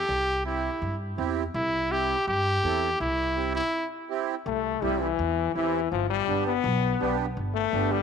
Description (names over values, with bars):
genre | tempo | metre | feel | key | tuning
latin | 165 BPM | 4/4 | straight | C major | A4 = 440 Hz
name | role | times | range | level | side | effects
bright trumpet | melody | 0.0-3.9 s | E4 to G4 | -27 LUFS | equal | none
upright bass | bass | 0.1-8.0 s | G1 to G2 | -32 LUFS | equal | none
accordion | accompaniment | 0.4-8.0 s | B3 to A4 | -32 LUFS | right 11 dB | light tremolo tuning
brilliant trombone | second line | 4.5-8.0 s | E3 to B3 | -26 LUFS | left 11 dB | slapback echo
room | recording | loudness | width
moderate plate reverb, RT60 3.0 s | 1960s-style stereo with parts hard left and right | -24 LUFS | side -6 dB against mid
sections
0.0-4.5 A section; 4.5-8.0 B section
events
break 3.7-4.5; trombone solo 4.5-8.0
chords
0.0 C; 5.9 G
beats
| 0.09 0.45 0.82 1.18 | 1.54 1.91 2.27 2.64 | 3.00 3.37 3.73 4.09 | 4.46 4.82 5.19 5.55 | 5.91 6.28 6.64 7.00 | 7.37 7.73